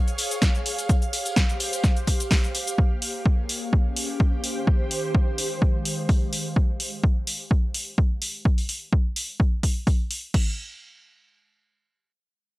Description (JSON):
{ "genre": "piano house", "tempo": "127 BPM", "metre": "4/4", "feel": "swing 54% on 16ths", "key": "unclear", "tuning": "A4 = 443 Hz", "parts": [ { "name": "ethereal airy pad", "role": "texture", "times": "0.0-6.6 s", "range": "Eb3 to F5", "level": "-31 LUFS", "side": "right 1 dB", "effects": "ensemble chorus, built-in reverb, sidechain pumping" }, { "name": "punchy analog drum machine", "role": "drums", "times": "0.1-10.2 s", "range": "cabasa, hi-hat, snare drum", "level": "-28 LUFS", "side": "equal", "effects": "overdrive" }, { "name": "tambourine", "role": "percussion", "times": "0.2-2.8 s", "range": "none", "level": "-35 LUFS", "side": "equal", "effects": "none" }, { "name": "punchy analog drum machine", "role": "drums", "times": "0.4-10.5 s", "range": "crash cymbal, kick drum", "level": "-21 LUFS", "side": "equal", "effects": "overdrive" } ], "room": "little or no reverb", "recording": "dry, gritty hardware recording", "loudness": "-21 LUFS", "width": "side -19 dB against mid", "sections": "0.0-10.3 A section; 10.3-12.6 B section", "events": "none", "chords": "0.0 Db/Ab; 0.7 G7sus4; 2.8 Bbm7; 3.5 Dbmaj7#11; 4.4 Eb9; 5.4 Abmaj7; 6.6 N.C." }